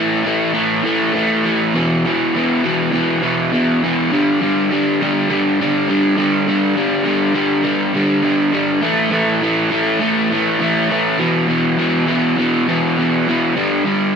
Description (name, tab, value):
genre	rock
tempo	102 BPM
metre	4/4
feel	straight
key	unclear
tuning	A4 = 441 Hz
part	crunchy overdriven guitar	solo	0.0-14.2 s	E2 to A3	-14 LUFS	equal	none
room	moderate stone room reverb, RT60 1.2 s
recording	band playing live in one room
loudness	-14 LUFS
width	side -6 dB against mid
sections	0.0-14.2 A section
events	none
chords	0.0 A5; 1.7 E5; 4.1 G5; 8.8 A5; 11.2 E5; 13.6 G5